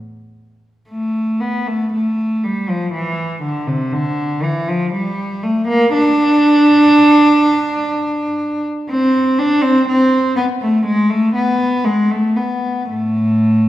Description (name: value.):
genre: classical, baroque-style suite movement for unaccompanied cello.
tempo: 60 BPM.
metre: 4/4.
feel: rubato.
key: A minor.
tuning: A4 = 442 Hz.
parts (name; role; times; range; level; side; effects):
rich cello; solo; 0.9-13.7 s; A2 to D4; -13 LUFS; equal; none.
room: wet recital hall reverb, RT60 1.5 s.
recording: heard from further back in the room.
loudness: -13 LUFS.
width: side -14 dB against mid.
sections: 0.9-13.7 A section.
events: none.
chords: none.